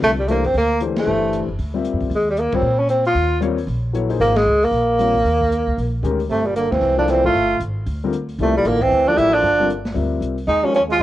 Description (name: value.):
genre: modal jazz.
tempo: 229 BPM.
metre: 4/4.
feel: swing 60% on 8ths.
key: G dorian.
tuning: A4 = 441 Hz.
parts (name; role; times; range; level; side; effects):
mellow tenor saxophone; melody; 0.0-11.0 s; G3 to F4; -17 LUFS; right 1 dB; cassette tape.
warm concert grand piano; accompaniment; 0.0-11.0 s; D3 to E5; -23 LUFS; left 6 dB; cassette tape.
upright bass; bass; 0.0-11.0 s; F#1 to Bb2; -24 LUFS; equal; none.
open jazz drum kit; drums; 0.0-11.0 s; hi-hat, kick drum, ride cymbal, snare drum; -31 LUFS; equal; cassette tape.
bright trombone; second line; 6.3-11.0 s; Bb2 to A3; -25 LUFS; right 6 dB; cassette tape.
room: moderate studio reverb, RT60 0.5 s.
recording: home recording on cassette.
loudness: -16 LUFS.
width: side -14 dB against mid.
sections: 0.0-11.0 A section.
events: band accent 0.9, 2.5, 4.3, 6.7.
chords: 0.0 G13sus4; 2.1 Eb13sus4; 6.3 G13sus4; 10.5 Eb9sus4.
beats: | 0.02 0.28 0.54 0.81 | 1.07 1.33 1.59 1.85 | 2.11 2.37 2.63 2.89 | 3.16 3.42 3.68 3.94 | 4.20 4.46 4.72 4.99 | 5.25 5.51 5.77 6.03 | 6.29 6.56 6.82 7.08 | 7.34 7.60 7.87 8.13 | 8.39 8.65 8.91 9.17 | 9.44 9.70 9.96 10.22 | 10.48 10.74 11.01.